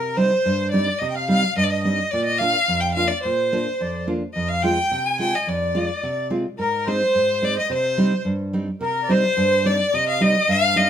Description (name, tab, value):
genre	klezmer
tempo	108 BPM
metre	2/4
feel	straight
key	C minor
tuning	A4 = 438 Hz
part	clear violin	melody	0.0-10.9 s	Bb4 to Ab5	-22 LUFS	left 4 dB	none
part	accordion	second line	0.0-10.9 s	Bb4 to Ab5	-24 LUFS	right 3 dB	light tremolo tuning
part	nylon-string guitar	accompaniment	0.0-10.9 s	F2 to F4	-23 LUFS	right 1 dB	none
room	moderate studio reverb, RT60 0.6 s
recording	minimal, uncompressed stereo recording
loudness	-18 LUFS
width	side -9 dB against mid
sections	0.0-8.8 A section; 8.8-10.9 A section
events	none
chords	0.0 Cm; 2.1 Bb; 4.4 Fm; 6.6 Ab; 7.7 Cm